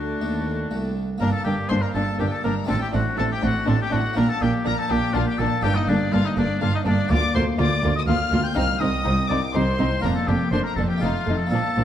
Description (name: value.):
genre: classical, baroque-style concerto movement with solo episodes.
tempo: 122 BPM.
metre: 3/4.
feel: straight.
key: G minor, Bb major from 7.1 s.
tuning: A4 = 441 Hz.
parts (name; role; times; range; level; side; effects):
clear oboe; melody; 0.0-11.8 s; D4 to G5; -27 LUFS; left 2 dB; none.
rich chamber violin section; melody; 0.0-11.8 s; D5 to G6; -31 LUFS; left 6 dB; none.
warm chamber violin section; second line; 0.0-11.8 s; D4 to F4; -30 LUFS; left 3 dB; none.
dark chamber viola section; accompaniment; 0.0-11.8 s; F3 to C4; -28 LUFS; equal; none.
harpsichord; accompaniment; 0.0-11.8 s; C2 to G4; -28 LUFS; left 1 dB; none.
rich chamber cello section; bass; 0.0-11.8 s; C2 to Bb2; -26 LUFS; right 2 dB; none.
warm chamber double bass section; bass; 1.2-11.8 s; F1 to D2; -26 LUFS; right 3 dB; none.
room: moderate scoring stage reverb, RT60 1.5 s.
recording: dark, warm production.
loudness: -20 LUFS.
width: side -10 dB against mid.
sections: 0.0-1.2 A section; 1.2-11.8 B section.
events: none.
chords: 0.0 D; 1.2 Gm; 2.7 D5/A; 4.2 Gmadd9/Bb; 5.6 Gm; 7.1 Bb/D; 8.6 Cm; 10.0 Bb/F; 11.0 F7.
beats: 0.21 0.71 | 1.21 1.70 2.20 | 2.69 3.18 3.67 | 4.16 4.65 5.14 | 5.63 6.12 6.61 | 7.10 7.59 8.08 | 8.56 9.05 9.54 | 10.03 10.53 11.02 | 11.52.